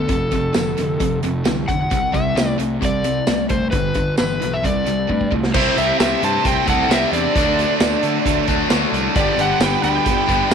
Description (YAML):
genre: classic rock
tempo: 132 BPM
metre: 4/4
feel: straight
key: unclear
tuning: A4 = 443 Hz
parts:
  - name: overdriven slide guitar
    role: melody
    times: 0.0-10.5 s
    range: A4 to A5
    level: -22 LUFS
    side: left 2 dB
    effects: none
  - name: crunchy overdriven guitar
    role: riff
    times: 0.0-10.5 s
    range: F2 to D4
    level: -23 LUFS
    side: left 13 dB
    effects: none
  - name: distorted electric guitar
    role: riff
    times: 0.0-10.5 s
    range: F2 to E4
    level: -24 LUFS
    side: right 13 dB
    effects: distortion
  - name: fuzz picked electric bass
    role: bass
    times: 0.0-10.5 s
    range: F1 to D3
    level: -25 LUFS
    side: right 1 dB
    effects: overdrive
  - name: vintage drum kit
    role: drums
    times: 0.1-10.5 s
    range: crash cymbal, hi-hat, kick drum, snare drum, tambourine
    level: -22 LUFS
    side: right 1 dB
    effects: none
  - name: string machine, full ensemble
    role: sustained chords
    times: 5.5-10.5 s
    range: A3 to D5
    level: -30 LUFS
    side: equal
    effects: none
  - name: octave-fuzz lead guitar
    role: second line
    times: 5.6-10.5 s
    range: D4 to C5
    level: -24 LUFS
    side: right 12 dB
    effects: distortion
room: light reverb, small room reverb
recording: 1960s-style stereo with parts hard left and right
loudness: -16 LUFS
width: side -7 dB against mid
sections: 0.0-5.5 A section; 5.5-10.5 B section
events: drum fill 5.1-5.5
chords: 0.1 F; 1.9 C; 3.7 G; 4.6 Csus2; 5.5 C6; 7.4 D; 9.2 G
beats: | 0.09 0.54 1.00 1.45 | 1.91 2.36 2.81 3.27 | 3.72 4.18 4.63 5.09 | 5.54 5.99 6.45 6.90 | 7.35 7.80 8.26 8.71 | 9.16 9.61 10.06 10.51